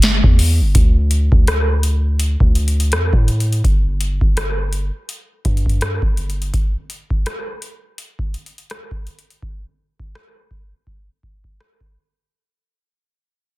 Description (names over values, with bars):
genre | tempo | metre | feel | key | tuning
contemporary R&B | 83 BPM | 4/4 | swing 58% on 16ths | D minor | A4 = 436 Hz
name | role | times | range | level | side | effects
long sustained 808-style bass | bass | 0.0-6.5 s | G1 to A2 | -17 LUFS | equal | none
booming analog drum machine | drums | 0.0-12.0 s | hi-hat, kick drum, rim click, snare drum | -17 LUFS | equal | none
room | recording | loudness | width
little or no reverb | dense, heavily limited modern master | -15 LUFS | side -19 dB against mid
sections
0.8-12.3 A section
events
fade-out 0.8-12.3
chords
none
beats
0.03 | 0.75 1.47 2.19 2.92 | 3.64 4.36 5.09 5.81 | 6.53 7.26 7.98 8.70 | 9.42 10.15 10.87 11.59